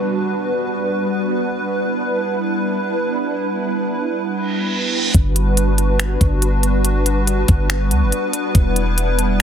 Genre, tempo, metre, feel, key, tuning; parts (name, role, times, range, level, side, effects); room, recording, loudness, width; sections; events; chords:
hip hop, atmospheric cloud-rap; 141 BPM; 4/4; half-time; A4 = 440 Hz
hollow soft pad; sustained chords; 0.0-9.4 s; G3 to B4; -19 LUFS; right 1 dB; ensemble chorus, sidechain pumping
downlifter and reverse cymbal; sound effects; 0.0-5.1 s; -25 LUFS; right 4 dB
warm 808-style bass; bass; 5.1-9.4 s; E1 to D2; -17 LUFS; equal
trap drum kit; drums; 5.1-9.3 s; finger snaps, hi-hat, kick drum; -16 LUFS; equal; soft clipping on snare
light reverb; dense, heavily limited modern master; -16 LUFS; side -8 dB against mid
0.0-5.1 A section; 5.1-9.4 B section
reverse cymbal 4.4-5.1
0.0 Gmaj7; 1.7 Em7; 5.1 Gmaj7; 8.6 Em7